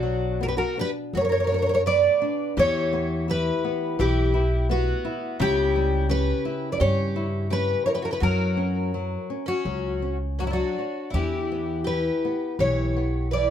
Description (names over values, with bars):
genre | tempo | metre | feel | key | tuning
fado-style ballad | 84 BPM | 4/4 | rubato | unclear | A4 = 437 Hz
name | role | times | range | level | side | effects
fingerpicked twelve-string acoustic guitar | melody | 0.0-13.5 s | E4 to D5 | -25 LUFS | equal | none
fingerpicked twelve-string acoustic guitar | second line | 0.0-13.5 s | B3 to B4 | -32 LUFS | right 2 dB | none
nylon-string guitar | accompaniment | 0.0-13.5 s | B2 to C#5 | -29 LUFS | left 2 dB | none
upright bass | bass | 0.0-13.5 s | B1 to G2 | -26 LUFS | equal | none
room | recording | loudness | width
light reverb | none | -22 LUFS | side -9 dB against mid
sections
0.0-13.5 A section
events
none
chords
0.0 Bm; 2.6 Em; 5.4 C#dim; 8.2 F#; 11.1 Em